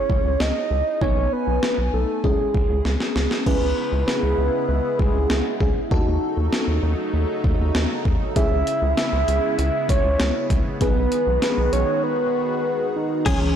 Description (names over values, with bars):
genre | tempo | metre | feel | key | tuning
synth-pop | 98 BPM | 4/4 | straight | C# minor | A4 = 439 Hz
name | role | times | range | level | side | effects
soft octave-layered synth lead | melody | 0.0-13.6 s | C#4 to E5 | -23 LUFS | right 2 dB | chorus, analog delay
FM electric piano with soft pad layer | accompaniment | 0.0-13.6 s | E3 to G#5 | -27 LUFS | equal | chorus, phaser
rubbery square bass | bass | 0.1-13.5 s | B1 to D#2 | -22 LUFS | equal | none
breakbeat sampler-style drum kit | drums | 0.1-13.4 s | crash cymbal, hi-hat, kick drum, snare drum | -24 LUFS | equal | overdrive
phased analog pad | sustained chords | 3.5-13.6 s | C#3 to F#4 | -30 LUFS | equal | phaser, chorus
direct-recorded clean electric guitar | second line | 13.3-13.4 s | G#4 | -26 LUFS | left 3 dB | tremolo
room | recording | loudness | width
moderate plate reverb, RT60 2.0 s | blown-out, overdriven recording, overdrive | -19 LUFS | side -9 dB against mid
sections
0.0-3.5 A section; 3.5-13.3 B section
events
drum fill 2.9-3.5; break 12.0-13.3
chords
0.0 C#m; 1.0 G#m/B; 2.2 C#m; 3.5 C#m7; 5.9 D#m7b5; 8.4 C#m7; 10.8 G#m7/B